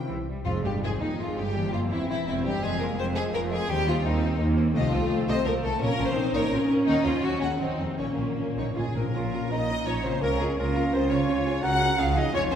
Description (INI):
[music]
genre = classical, dramatic, fast romantic movement for symphony orchestra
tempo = 168 BPM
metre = 3/4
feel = rubato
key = F minor, Bb minor from 4.8 s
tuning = A4 = 442 Hz
[part]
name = warm symphonic violin section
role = melody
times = 0.0-12.6 s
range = Eb4 to Bb5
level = -38 LUFS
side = left 4 dB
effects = none
[part]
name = mellow cor anglais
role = second line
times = 0.0-0.1, 9.2-12.6 s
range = Db4 to Bb4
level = -34 LUFS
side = right 2 dB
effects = none
[part]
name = warm French horn section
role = sustained chords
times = 0.0-12.6 s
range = Bb2 to Gb4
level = -33 LUFS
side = left 2 dB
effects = none
[part]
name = concert harp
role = arpeggios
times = 0.0-12.6 s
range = Bb2 to C5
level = -33 LUFS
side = left 3 dB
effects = none
[part]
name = rich symphonic cello section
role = bass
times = 0.0-12.6 s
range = Eb2 to G3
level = -32 LUFS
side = right 3 dB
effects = none
[part]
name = rich symphonic violin section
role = second line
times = 0.1-12.6 s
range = Bb3 to Gb5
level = -30 LUFS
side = left 2 dB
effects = none
[part]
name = rich symphonic viola section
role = accompaniment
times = 0.1-12.6 s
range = F3 to F4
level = -30 LUFS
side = right 1 dB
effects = none
[part]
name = rich symphonic double bass section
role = bass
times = 0.1-12.6 s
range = E1 to Eb2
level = -32 LUFS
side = right 2 dB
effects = none
[part]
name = timpani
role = percussion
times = 0.5-1.0, 5.8-9.1 s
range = F2 to Bb2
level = -34 LUFS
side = left 1 dB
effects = none
[part]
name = mellow clarinet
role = second line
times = 8.8-12.6 s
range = Ab4 to Gb5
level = -32 LUFS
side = equal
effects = none
[sound]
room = wet scoring stage reverb, RT60 1.8 s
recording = heard from further back in the room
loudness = -23 LUFS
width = side -8 dB against mid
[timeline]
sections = 0.5-9.1 A section; 9.1-12.6 B section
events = timpani fill 8.0-9.1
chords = 0.1 C; 0.5 Fm; 1.5 C7; 2.6 Fm; 3.7 Cm/Eb; 4.8 F7/C; 5.8 Bbm; 6.9 Ebm; 7.6 F7b9; 8.0 Bbm; 10.2 Bbm/Db; 11.3 Db